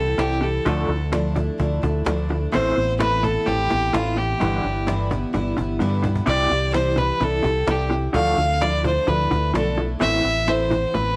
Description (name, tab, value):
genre	folk rock and heartland rock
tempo	128 BPM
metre	4/4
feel	straight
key	C major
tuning	A4 = 440 Hz
part	rich fiddle	melody	0.0-11.2 s	F4 to F5	-25 LUFS	equal	none
part	picked twelve-string acoustic guitar	accompaniment	0.0-11.2 s	G2 to G4	-29 LUFS	equal	none
part	electric guitar through a small old amp	riff	0.0-11.2 s	G2 to C4	-30 LUFS	equal	tremolo
part	deep dub fingered electric bass	bass	0.0-11.1 s	G1 to G2	-27 LUFS	equal	none
part	cajon	drums	0.2-11.1 s	none	-32 LUFS	equal	none
room	light reverb, small room ambience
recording	none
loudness	-21 LUFS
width	mono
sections	0.0-11.2 A section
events	drum fill 5.8-6.3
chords	0.0 C; 0.7 Dmadd9; 2.5 Amadd9; 4.4 G6; 6.3 C; 8.1 Dmadd9; 10.0 Amadd9